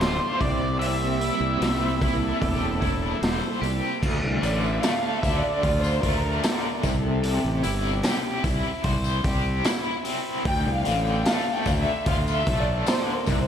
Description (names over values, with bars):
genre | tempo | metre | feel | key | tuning
psychedelic rock | 75 BPM | 4/4 | straight | D minor | A4 = 440 Hz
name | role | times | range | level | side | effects
octave-fuzz lead guitar | melody | 0.0-3.2 s | C5 to E5 | -30 LUFS | left 1 dB | distortion, ping-pong delay
rich studio string section | sustained chords | 0.0-13.5 s | F3 to G5 | -29 LUFS | right 1 dB | none
biting overdriven guitar | riff | 0.0-13.5 s | D2 to C5 | -28 LUFS | left 1 dB | tremolo
fuzz fingered electric bass | bass | 0.0-13.5 s | D1 to D2 | -27 LUFS | equal | overdrive
raw garage drum kit | drums | 0.0-13.5 s | crash cymbal, hi-hat, kick drum, snare drum | -27 LUFS | equal | none
tambourine | percussion | 4.0-13.5 s | none | -42 LUFS | left 12 dB | none
room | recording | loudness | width
moderate plate reverb, RT60 2.6 s | dreamy mix soaked in reverb | -22 LUFS | side -8 dB against mid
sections
0.0-4.0 A section; 4.0-13.5 B section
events
string section solo 4.0-13.5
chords
0.4 C7; 4.0 Dm; 6.8 C; 10.5 Dm